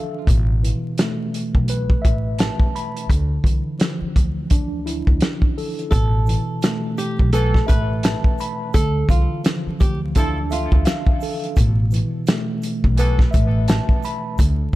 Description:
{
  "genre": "hip hop, boom-bap hip-hop",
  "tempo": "85 BPM",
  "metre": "4/4",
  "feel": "swing 60% on 16ths",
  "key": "unclear",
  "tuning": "A4 = 437 Hz",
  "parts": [
    { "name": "mellow tine electric piano", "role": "accompaniment", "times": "0.0-14.8 s", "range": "B2 to B5", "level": "-25 LUFS", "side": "equal", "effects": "medium stereo tremolo, cassette tape, high-pass filter, low-pass filter" },
    { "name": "upright bass", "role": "bass", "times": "0.3-14.8 s", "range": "A1 to D2", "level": "-20 LUFS", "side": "equal", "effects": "none" },
    { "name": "warm soul drum kit", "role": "drums", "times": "0.3-14.8 s", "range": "hi-hat, kick drum, snare drum", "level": "-18 LUFS", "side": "equal", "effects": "none" },
    { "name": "flamenco guitar", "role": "melody", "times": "5.9-10.8 s", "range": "F4 to B4", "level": "-28 LUFS", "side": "right 3 dB", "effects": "high-pass filter, low-pass filter, ping-pong delay" },
    { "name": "egg shaker", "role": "percussion", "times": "5.9-14.8 s", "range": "none", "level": "-47 LUFS", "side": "right 8 dB", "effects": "none" },
    { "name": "warm horn section", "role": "stabs", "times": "7.3-13.2 s", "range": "E3 to A4", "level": "-31 LUFS", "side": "equal", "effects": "high-pass filter, low-pass filter, ping-pong delay" }
  ],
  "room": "small room ambience",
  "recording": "dark, warm production, vinyl crackle",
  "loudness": "-17 LUFS",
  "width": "side -17 dB against mid",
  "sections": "0.0-5.9 A section; 5.9-14.8 B section",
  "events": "none",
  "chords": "0.3 Asus2; 3.1 Dmadd9; 5.9 Asus2; 8.7 Dmadd9; 11.6 Asus2"
}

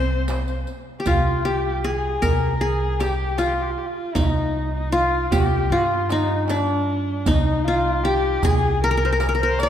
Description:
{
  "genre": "Turkish makam ensemble",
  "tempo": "77 BPM",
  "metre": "4/4",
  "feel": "straight",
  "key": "C makam ussak",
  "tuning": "A4 = 438 Hz",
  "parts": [
    { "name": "qanun", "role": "melody", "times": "0.0-9.7 s", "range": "D4-30c to D5-30c", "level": "-22 LUFS", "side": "left 1 dB", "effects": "none" },
    { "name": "dark chamber cello section", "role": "second line", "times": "0.0-0.7 s", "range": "C4", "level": "-32 LUFS", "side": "left 1 dB", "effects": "none" },
    { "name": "warm kamancheh", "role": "second line", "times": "0.0-9.7 s", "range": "D4-30c to D5-23c", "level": "-28 LUFS", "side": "left 2 dB", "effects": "none" },
    { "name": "upright bass", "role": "bass", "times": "0.0-9.7 s", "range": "C2 to G2", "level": "-24 LUFS", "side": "equal", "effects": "none" },
    { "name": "darbuka", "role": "percussion", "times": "0.3-9.7 s", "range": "none", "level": "-27 LUFS", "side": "right 3 dB", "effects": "none" },
    { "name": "riq", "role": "percussion", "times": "0.3-9.7 s", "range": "none", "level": "-32 LUFS", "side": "right 3 dB", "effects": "none" }
  ],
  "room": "moderate concert hall reverb, RT60 2.3 s",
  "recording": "minimal, uncompressed stereo recording",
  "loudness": "-19 LUFS",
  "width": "side -10 dB against mid",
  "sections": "0.0-1.1 A section; 1.1-9.7 B section",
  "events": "none",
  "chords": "none"
}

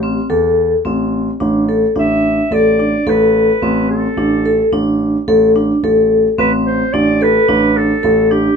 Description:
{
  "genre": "contemporary instrumental, chamber music in an uneven meter",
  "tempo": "108 BPM",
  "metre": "5/4",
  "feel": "straight",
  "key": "unclear",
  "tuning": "A4 = 440 Hz",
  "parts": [
    { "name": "warm clarinet", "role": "melody", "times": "0.0-8.6 s", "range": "G4 to E5", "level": "-18 LUFS", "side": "right 3 dB", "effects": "none" },
    { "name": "vibraphone with hard mallets", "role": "arpeggios", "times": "0.0-8.5 s", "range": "C4 to A4", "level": "-13 LUFS", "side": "left 1 dB", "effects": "none" },
    { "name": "dark grand piano", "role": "bass", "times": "0.0-8.5 s", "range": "A1 to E2", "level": "-18 LUFS", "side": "right 1 dB", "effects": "none" }
  ],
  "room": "little or no reverb",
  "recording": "minimal, uncompressed stereo recording",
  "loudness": "-11 LUFS",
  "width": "side -6 dB against mid",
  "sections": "0.0-8.6 A section",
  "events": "none",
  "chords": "0.0 Am7; 1.4 D5/A"
}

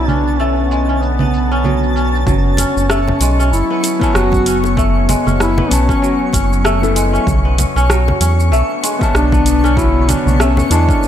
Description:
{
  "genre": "organic downtempo",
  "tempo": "96 BPM",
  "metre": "4/4",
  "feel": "swing 58% on 16ths",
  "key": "F# minor",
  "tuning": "A4 = 441 Hz",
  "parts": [
    { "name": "warm duduk", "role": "melody", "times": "0.0-11.1 s", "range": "B3 to F#4", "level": "-19 LUFS", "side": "left 1 dB", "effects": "digital delay" },
    { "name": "mellow electric guitar", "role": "accompaniment", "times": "0.0-11.1 s", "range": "B3 to A5", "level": "-21 LUFS", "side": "left 5 dB", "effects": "sidechain pumping, ping-pong delay" },
    { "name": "bowed-like drone", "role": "sustained chords", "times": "0.0-11.1 s", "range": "D3 to C#4", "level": "-24 LUFS", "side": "equal", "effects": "built-in reverb, phaser, sidechain pumping" },
    { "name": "kora", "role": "arpeggios", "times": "0.0-11.1 s", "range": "F#3 to C#4", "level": "-20 LUFS", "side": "equal", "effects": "ping-pong delay" },
    { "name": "round analog bass", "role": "bass", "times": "0.0-10.9 s", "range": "F#1 to E2", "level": "-15 LUFS", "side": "equal", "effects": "tube saturation" },
    { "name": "twinkling granular texture", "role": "texture", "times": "0.0-11.1 s", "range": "A5 to C#6", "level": "-27 LUFS", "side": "equal", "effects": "built-in reverb" },
    { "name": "deep house drum kit", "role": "drums", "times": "0.1-11.1 s", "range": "congas, hi-hat, rim click, shaker", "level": "-21 LUFS", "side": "right 2 dB", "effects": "overdrive, low-pass filter on perc, studio reverb, low-pass filter on hats, low-pass filter on snare" },
    { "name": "electronic kick drum", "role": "drums", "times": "2.3-11.0 s", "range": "none", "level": "-18 LUFS", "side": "equal", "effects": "overdrive, studio reverb" },
    { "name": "congas and bongos", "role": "percussion", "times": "2.6-10.9 s", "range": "none", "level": "-23 LUFS", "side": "left 2 dB", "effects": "none" }
  ],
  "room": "light reverb",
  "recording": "none",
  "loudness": "-12 LUFS",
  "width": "side -10 dB against mid",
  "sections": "0.0-2.3 A section; 2.3-11.1 B section",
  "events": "none",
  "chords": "0.0 Bm7; 2.3 F#m; 7.3 Bm7"
}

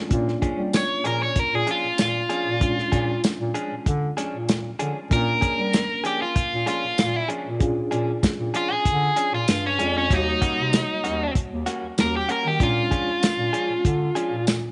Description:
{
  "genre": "straight-eighth soul blues",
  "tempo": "96 BPM",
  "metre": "4/4",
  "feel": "straight",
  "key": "unclear",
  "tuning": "A4 = 440 Hz",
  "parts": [
    { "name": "reed electric piano", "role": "accompaniment", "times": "0.0-14.7 s", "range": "G3 to Db5", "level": "-33 LUFS", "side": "equal", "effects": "fast tremolo" },
    { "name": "mellow bass clarinet", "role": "bass", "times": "0.1-14.7 s", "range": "Eb2 to G3", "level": "-30 LUFS", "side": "equal", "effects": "none" },
    { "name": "warm soul drum kit", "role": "drums", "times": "0.1-14.6 s", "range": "hi-hat, kick drum, snare drum, tambourine", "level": "-26 LUFS", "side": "equal", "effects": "none" },
    { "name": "direct-recorded clean electric guitar", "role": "stabs", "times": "0.4-14.4 s", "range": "F3 to Ab4", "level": "-34 LUFS", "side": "equal", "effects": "spring reverb" },
    { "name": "biting overdriven guitar", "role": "melody", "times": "0.8-14.4 s", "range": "C#4 to C#5", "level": "-26 LUFS", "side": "equal", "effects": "none" }
  ],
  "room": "light reverb, small room ambience",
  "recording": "nothing above 10.8 kHz",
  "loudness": "-23 LUFS",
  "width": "mono",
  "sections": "0.1-14.7 A section",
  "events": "overdriven electric guitar solo 0.1-14.7",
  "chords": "0.1 Bb7#9; 10.1 Eb7#9; 12.6 Bb7#9"
}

